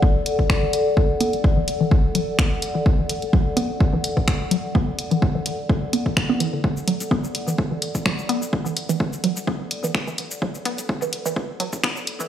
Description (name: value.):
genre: minimal techno.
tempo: 127 BPM.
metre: 4/4.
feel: swing 54% on 16ths.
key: unclear.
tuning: A4 = 438 Hz.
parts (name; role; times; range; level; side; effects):
hollow square pluck; riff; 0.0-12.3 s; D3 to B3; -25 LUFS; equal; chorus, phaser, sidechain pumping, digital delay.
punchy sub bass; bass; 0.0-12.3 s; D1 to E2; -40 LUFS; equal; none.
electronic kick drum; drums; 0.0-11.9 s; none; -20 LUFS; equal; none.
warbly tape-like pad; texture; 0.0-12.3 s; A4 to F#5; -28 LUFS; left 2 dB; chorus, built-in reverb, sidechain pumping.
punchy analog drum machine; drums; 0.3-12.3 s; finger snaps, hi-hat, shaker; -26 LUFS; left 1 dB; none.
room: light reverb.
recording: played on a big sound system in a bare room, large studio reverb, high-pass filter.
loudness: -19 LUFS.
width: side -10 dB against mid.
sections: 0.0-12.3 A section.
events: build-up 0.0-12.3; filter sweep on synth arpeggio sound 0.0-12.3; filter sweep 0.0-12.3.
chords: 0.0 E7(no3).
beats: 0.03 0.50 | 0.97 1.44 1.92 2.39 | 2.86 3.33 3.81 4.28 | 4.75 5.22 5.69 6.17 | 6.64 7.11 7.58 8.06 | 8.53 9.00 9.47 9.95 | 10.42 10.89 11.36 11.84.